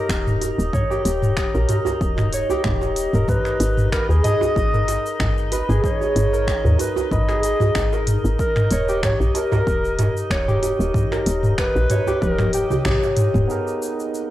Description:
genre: organic downtempo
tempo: 94 BPM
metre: 4/4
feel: swing 53% on 16ths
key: G# harmonic minor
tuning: A4 = 440 Hz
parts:
  - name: concert harp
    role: arpeggios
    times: 0.0-14.3 s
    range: G4 to G5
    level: -24 LUFS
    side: left 1 dB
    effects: low-pass filter, analog delay
  - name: drifting glass-harmonics texture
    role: texture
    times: 0.0-14.3 s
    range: A#3 to D#5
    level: -32 LUFS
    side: equal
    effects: chorus, built-in reverb
  - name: woody FM bass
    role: bass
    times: 0.1-13.5 s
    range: D#1 to D#2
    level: -22 LUFS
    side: equal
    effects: tube saturation, sidechain pumping
  - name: afro-pop drum kit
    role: drums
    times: 0.1-14.3 s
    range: finger snaps, hi-hat, shaker, toms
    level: -22 LUFS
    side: equal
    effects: none
  - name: electronic kick drum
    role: drums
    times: 0.1-13.0 s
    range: none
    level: -26 LUFS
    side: equal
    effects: overdrive
  - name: djembe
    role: percussion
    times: 0.4-13.2 s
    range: none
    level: -29 LUFS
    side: right 8 dB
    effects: none
  - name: mellow clarinet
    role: melody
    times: 3.3-13.1 s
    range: G4 to D#5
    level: -25 LUFS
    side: equal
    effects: cassette tape, tape echo
  - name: barky tine electric piano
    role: accompaniment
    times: 13.5-14.3 s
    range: B3 to A#4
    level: -26 LUFS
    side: right 5 dB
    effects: medium stereo tremolo, sidechain pumping, analog delay
room: light reverb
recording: home recording on cassette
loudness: -17 LUFS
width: side -14 dB against mid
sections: 0.0-13.5 A section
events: drum fill 12.2-13.5; band accent 12.9-13.2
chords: 0.0 D#7; 3.3 G#madd9; 8.4 D#7; 13.5 G#madd9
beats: 0.09 | 0.73 1.37 2.01 2.65 | 3.29 3.92 4.56 5.20 | 5.84 6.48 7.12 7.75 | 8.39 9.03 9.67 10.31 | 10.94 11.58 12.22 12.86 | 13.50 14.14

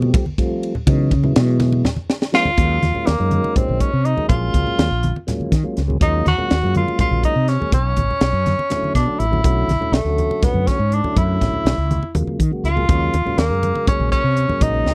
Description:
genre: electric jazz fusion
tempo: 244 BPM (eighths)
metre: 7/8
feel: straight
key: unclear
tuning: A4 = 440 Hz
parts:
  - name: tonewheel organ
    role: accompaniment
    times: 0.0-14.9 s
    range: Db3 to Ab4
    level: -27 LUFS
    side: equal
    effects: slow rotary speaker, overdrive
  - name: mellow fretless electric bass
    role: bass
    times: 0.0-14.9 s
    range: A1 to Eb3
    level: -21 LUFS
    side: equal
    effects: none
  - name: congas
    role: percussion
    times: 0.0-14.9 s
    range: none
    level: -27 LUFS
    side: equal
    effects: none
  - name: crisp fusion drum kit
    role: drums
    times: 0.1-14.9 s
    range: hi-hat, kick drum, ride cymbal, snare drum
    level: -22 LUFS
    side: equal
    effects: none
  - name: warm tenor saxophone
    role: melody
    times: 2.3-14.9 s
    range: A3 to Gb4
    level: -23 LUFS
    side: equal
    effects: none
room: little or no reverb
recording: dry, close 1970s-style studio recording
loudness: -18 LUFS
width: mono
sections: 0.0-2.6 A section; 2.6-14.9 B section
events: fretless electric bass solo 0.0-2.6; drum fill 1.8-2.6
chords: 0.0 Fadd9(#11)/B; 0.9 C#m11; 1.8 A#7; 2.6 Ebm11; 7.7 Bm11; 12.2 Ebm11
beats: 0.14 0.38 0.62 | 0.87 1.11 1.36 1.60 1.84 2.09 2.33 | 2.58 2.82 3.07 3.31 3.56 3.80 4.05 | 4.29 4.54 4.78 5.03 5.27 5.52 5.76 | 6.01 6.26 6.50 6.75 6.99 7.24 7.48 | 7.73 7.97 8.22 8.47 8.71 8.96 9.20 | 9.45 9.69 9.94 10.19 10.43 10.68 10.92 | 11.17 11.41 11.66 11.90 12.15 12.40 12.64 | 12.89 13.13 13.38 13.63 13.87 14.12 14.37 | 14.61 14.86

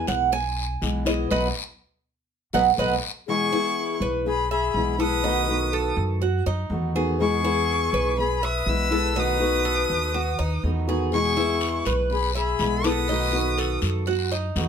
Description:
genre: latin, Cuban son and guajira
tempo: 122 BPM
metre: 4/4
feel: straight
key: E major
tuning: A4 = 440 Hz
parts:
  - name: fingerpicked steel-string acoustic guitar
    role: accompaniment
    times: 0.0-14.7 s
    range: B2 to F#4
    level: -27 LUFS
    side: left 1 dB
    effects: none
  - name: Cuban tres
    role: arpeggios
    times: 0.0-14.7 s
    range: D#4 to G#5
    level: -27 LUFS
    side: right 5 dB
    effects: none
  - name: upright bass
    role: bass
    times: 0.1-14.7 s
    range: B1 to F#2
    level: -27 LUFS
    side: equal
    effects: none
  - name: guiro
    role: percussion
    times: 0.1-2.9, 11.1-14.7 s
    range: none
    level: -34 LUFS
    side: left 7 dB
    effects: none
  - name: dark violin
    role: melody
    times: 3.3-13.8 s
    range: B5 to E6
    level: -26 LUFS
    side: left 1 dB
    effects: none
  - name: breathy bright concert flute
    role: second line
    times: 3.3-13.8 s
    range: G#4 to B4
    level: -28 LUFS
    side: left 9 dB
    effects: none
room: moderate studio reverb, RT60 0.6 s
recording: none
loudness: -21 LUFS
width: side -7 dB against mid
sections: 0.0-3.3 A section; 3.3-14.7 B section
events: Cuban tres solo 0.0-3.3; band accent 1.3-3.3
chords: 0.0 E; 1.3 B7; 3.3 E; 5.2 B7; 7.2 E; 9.2 B7; 11.1 E; 13.1 B7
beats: 0.33 0.82 | 1.31 1.80 2.29 2.78 | 3.27 3.77 4.26 4.75 | 5.24 5.73 6.22 6.71 | 7.20 7.69 8.18 8.67 | 9.16 9.65 10.14 10.63 | 11.12 11.61 12.11 12.60 | 13.09 13.58 14.07 14.56

